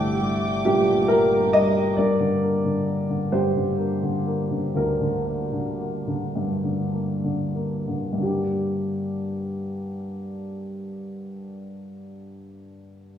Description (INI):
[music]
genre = acoustic folk-pop ballad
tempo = 29-45 BPM (dotted quarters)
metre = 6/8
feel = straight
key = G minor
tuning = A4 = 438 Hz
[part]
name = dark grand piano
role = melody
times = 0.0-13.2 s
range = D2 to Eb5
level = -22 LUFS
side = equal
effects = none
[part]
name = dark chamber string section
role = sustained chords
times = 0.0-1.9 s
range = G4 to D6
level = -31 LUFS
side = right 2 dB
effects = none
[part]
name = fingered electric bass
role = bass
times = 0.0-1.9 s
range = G1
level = -37 LUFS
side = right 1 dB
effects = none
[sound]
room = wet recital hall reverb, RT60 1.5 s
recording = recorded in a church or concert hall, small room ambience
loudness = -21 LUFS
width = side -9 dB against mid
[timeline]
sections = 0.0-2.0 A section; 2.0-8.2 B section; 8.2-12.3 C section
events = slowing down 2.0-8.2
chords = 0.0 Gm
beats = 0.63 | 1.97 3.32 | 4.76 6.35 | 8.21 10.24